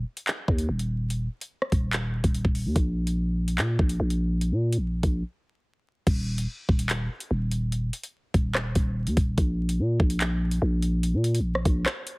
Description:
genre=hip hop, drill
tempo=145 BPM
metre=4/4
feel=half-time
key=unclear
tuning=A4 = 440 Hz
part: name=growling 808-style bass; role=bass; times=0.0-11.9 s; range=Eb1 to Bb2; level=-25 LUFS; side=equal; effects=none
part: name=drill drum kit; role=drums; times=0.2-12.2 s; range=crash cymbal, handclaps, hi-hat, kick drum, rim click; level=-26 LUFS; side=equal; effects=none
room=little or no reverb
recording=heavily compressed radio sound, multiband compression, vinyl crackle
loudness=-24 LUFS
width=side -28 dB against mid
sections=0.0-6.1 A section; 6.1-12.2 B section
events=break 5.2-6.1, 11.9-12.2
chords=none

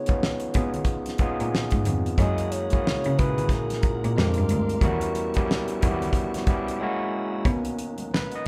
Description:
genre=R&B, neo-soul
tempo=91 BPM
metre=4/4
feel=swing 60% on 16ths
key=B major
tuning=A4 = 437 Hz
part: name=breathy flugelhorn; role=melody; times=0.0-6.8 s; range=A#4 to D#5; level=-33 LUFS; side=equal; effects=none
part: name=overdriven tine electric piano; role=accompaniment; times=0.0-8.5 s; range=A#2 to D#5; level=-31 LUFS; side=equal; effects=none
part: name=bright cello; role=bass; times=0.0-8.4 s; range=D2 to C#3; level=-30 LUFS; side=equal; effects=none
part: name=damped 70s drum kit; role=drums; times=0.1-8.5 s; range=hi-hat, kick drum, snare drum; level=-28 LUFS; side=equal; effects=none
part: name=congas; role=percussion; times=0.1-8.5 s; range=none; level=-40 LUFS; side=equal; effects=none
part: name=tonewheel organ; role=sustained chords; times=2.2-8.5 s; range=D#3 to E6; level=-42 LUFS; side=equal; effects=chorus vibrato, stopped rotary speaker
room=moderate large studio reverb, RT60 0.9 s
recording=band playing live in one room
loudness=-25 LUFS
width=mono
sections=0.0-7.5 A section; 7.5-8.5 B section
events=break 6.8-7.5; tine electric piano solo 7.5-8.5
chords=0.0 C#7; 2.2 F#9; 4.2 Fm6; 4.8 Em6; 6.8 F#9; 7.5 Bmaj7

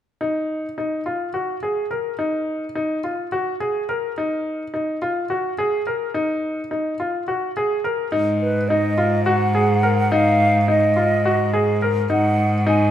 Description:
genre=contemporary instrumental, contemporary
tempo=212 BPM (eighths)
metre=7/8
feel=straight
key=unclear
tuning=A4 = 440 Hz
part: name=bright baby grand piano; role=arpeggios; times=0.2-12.9 s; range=D#4 to A#4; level=-21 LUFS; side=left 1 dB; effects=none
part: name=bright cello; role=bass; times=8.1-12.9 s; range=G#2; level=-21 LUFS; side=equal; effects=none
part: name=hollow concert flute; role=melody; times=8.4-12.9 s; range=B4 to G#5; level=-21 LUFS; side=right 2 dB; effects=none
room=moderate recital hall reverb, RT60 1.7 s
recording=none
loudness=-18 LUFS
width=side -10 dB against mid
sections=0.2-8.1 A section; 8.1-12.9 B section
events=none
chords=0.2 G#5

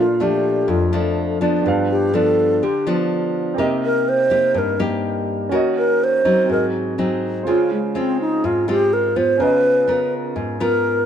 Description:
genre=bossa nova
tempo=124 BPM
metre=4/4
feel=straight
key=unclear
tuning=A4 = 444 Hz
part: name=wooden-headed alto flute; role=melody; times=0.0-11.1 s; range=Ab3 to C5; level=-18 LUFS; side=equal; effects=none
part: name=nylon-string guitar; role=accompaniment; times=0.0-11.1 s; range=F2 to Bb4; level=-20 LUFS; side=left 1 dB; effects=none
part: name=warm concert grand piano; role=accompaniment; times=0.0-11.1 s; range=Bb3 to Bb5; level=-26 LUFS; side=right 4 dB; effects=none
room=light reverb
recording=none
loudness=-16 LUFS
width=side -8 dB against mid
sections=0.0-11.1 A section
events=alto flute solo 0.0-11.1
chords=0.0 Bbmaj7; 1.6 G7; 3.6 Cm7; 5.5 Ebm7; 6.5 Ab7; 7.5 Dbmaj7; 9.4 Db13

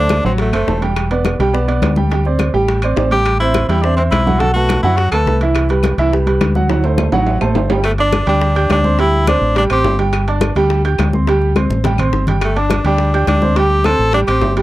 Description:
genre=latin, salsa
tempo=210 BPM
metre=4/4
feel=straight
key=G major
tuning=A4 = 440 Hz
part: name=bright tenor saxophone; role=melody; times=0.0-0.8, 3.1-5.4, 7.8-10.0, 12.4-14.5 s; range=A3 to A4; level=-17 LUFS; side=equal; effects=none
part: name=clear baby grand piano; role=accompaniment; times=0.0-14.6 s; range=E3 to G6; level=-17 LUFS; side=right 3 dB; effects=none
part: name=fingered electric bass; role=bass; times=0.0-14.6 s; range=E1 to F#2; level=-16 LUFS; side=equal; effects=none
part: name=bongos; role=percussion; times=0.1-14.6 s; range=none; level=-26 LUFS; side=left 8 dB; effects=none
part: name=claves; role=percussion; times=0.1-14.4 s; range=none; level=-30 LUFS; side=left 10 dB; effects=none
part: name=congas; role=percussion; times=0.1-14.6 s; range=none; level=-22 LUFS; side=left 2 dB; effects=none
part: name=timbales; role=percussion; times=0.1-14.6 s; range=none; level=-25 LUFS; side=right 5 dB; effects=none
room=light reverb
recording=dry, close 1970s-style studio recording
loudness=-12 LUFS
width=side -16 dB against mid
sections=0.0-7.8 A section; 7.8-14.6 B section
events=drum fill 6.7-7.8, 11.6-12.4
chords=0.0 D7; 1.0 Em7; 2.1 D7sus4; 3.3 Am7; 4.4 B7(no3); 5.6 Cmaj7; 6.7 D7; 7.8 G5; 9.0 D7sus4; 10.1 G5; 11.3 D7sus4; 12.4 G5; 13.6 D7sus4

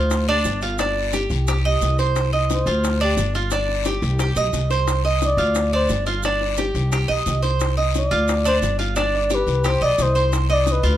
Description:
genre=latin, Cuban son and guajira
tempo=176 BPM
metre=4/4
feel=straight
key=C harmonic minor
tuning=A4 = 440 Hz
part: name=trumpet with bucket mute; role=melody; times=0.0-0.4, 2.5-3.2, 5.3-5.9, 8.0-11.0 s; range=G4 to D5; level=-22 LUFS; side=left 2 dB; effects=none
part: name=Cuban tres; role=arpeggios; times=0.0-11.0 s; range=D4 to Eb5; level=-22 LUFS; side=right 3 dB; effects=none
part: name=upright bass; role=bass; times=0.0-11.0 s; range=G1 to D2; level=-21 LUFS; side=equal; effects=none
part: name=bongos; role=percussion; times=0.1-11.0 s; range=none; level=-30 LUFS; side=left 8 dB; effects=none
part: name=guiro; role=percussion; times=0.1-11.0 s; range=none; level=-33 LUFS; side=left 12 dB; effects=none
part: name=maracas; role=percussion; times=0.1-11.0 s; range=none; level=-34 LUFS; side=right 7 dB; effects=none
room=little or no reverb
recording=close, detailed microphones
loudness=-18 LUFS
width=side -12 dB against mid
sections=0.0-11.0 A section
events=muted trumpet solo 0.0-11.0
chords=0.1 Dmadd11; 0.8 G5; 1.5 Cm; 2.8 Dmadd11; 3.5 G5; 4.2 Cm; 5.6 G7sus4; 6.2 G5; 6.9 Cm; 8.3 G7(no3); 9.0 G; 9.6 Cm

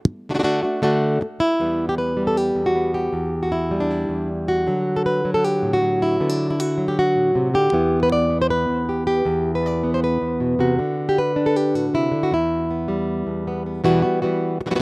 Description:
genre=flamenco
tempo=157 BPM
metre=4/4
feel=straight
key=E minor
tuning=A4 = 440 Hz
part: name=flamenco guitar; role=solo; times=0.1-14.8 s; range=E2 to D5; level=-18 LUFS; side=equal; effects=slapback echo
room=little or no reverb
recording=recorded outdoors, with no room sound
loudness=-18 LUFS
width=side -28 dB against mid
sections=0.0-1.6 A section; 1.6-13.8 B section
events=none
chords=0.0 D; 1.6 Emadd9; 4.7 D; 7.7 Em; 10.8 D; 12.3 Em; 13.8 Emadd9

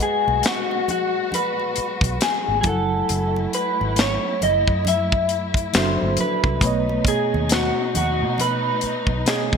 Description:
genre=R&B, neo-soul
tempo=68 BPM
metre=4/4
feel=swing 60% on 16ths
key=F# dorian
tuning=A4 = 440 Hz
part: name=electric guitar through a small old amp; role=melody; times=0.0-9.6 s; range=F#4 to E5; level=-22 LUFS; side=left 1 dB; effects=analog chorus
part: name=mellow tine electric piano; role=accompaniment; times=0.0-9.6 s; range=B2 to G#5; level=-27 LUFS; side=right 2 dB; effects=medium stereo tremolo
part: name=warm studio string section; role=sustained chords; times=0.0-9.6 s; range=A#2 to F#4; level=-30 LUFS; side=left 3 dB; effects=none
part: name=tight funk drum kit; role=drums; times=0.0-9.6 s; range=hi-hat, kick drum, snare drum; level=-22 LUFS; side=left 1 dB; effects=gated reverb
part: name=vintage muted fingered electric bass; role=bass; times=0.3-9.6 s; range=F#1 to B2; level=-25 LUFS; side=equal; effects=none
part: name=congas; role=percussion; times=0.3-9.6 s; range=none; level=-35 LUFS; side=equal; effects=none
room=light reverb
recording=bright 1980s-style digital production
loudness=-18 LUFS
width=side -6 dB against mid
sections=0.0-9.6 A section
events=none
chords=0.0 G#m7; 2.6 F#m9; 5.7 F#7alt; 6.6 B7

